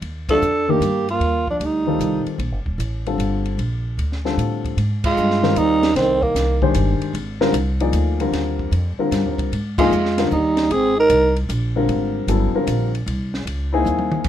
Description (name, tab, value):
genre	modal jazz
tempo	152 BPM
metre	3/4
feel	swing 67% on 8ths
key	Ab lydian from 4.8 s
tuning	A4 = 440 Hz
part	upright bass	bass	0.0-14.3 s	Eb1 to A2	-22 LUFS	equal	none
part	compact cocktail drum kit	drums	0.0-14.3 s	crash cymbal, hi-hat, kick drum, ride cymbal, snare drum, toms	-29 LUFS	equal	none
part	growling tenor saxophone	melody	0.3-2.3, 5.1-6.6, 9.8-11.3 s	Bb3 to Bb4	-18 LUFS	right 1 dB	none
part	breathy trombone	second line	0.3-2.3, 5.1-6.6, 9.8-11.3 s	Eb3 to Eb4	-24 LUFS	right 5 dB	none
part	warm baby grand piano	accompaniment	0.3-14.2 s	C3 to D5	-21 LUFS	left 4 dB	none
room	light reverb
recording	minimal, uncompressed stereo recording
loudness	-17 LUFS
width	side -11 dB against mid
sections	0.0-4.8 A section; 4.8-14.2 B section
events	band accent 0.2, 5.0, 9.7; drum fill 13.9-14.2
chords	0.0 Ebmaj9; 4.8 Abmaj9; 13.1 C7alt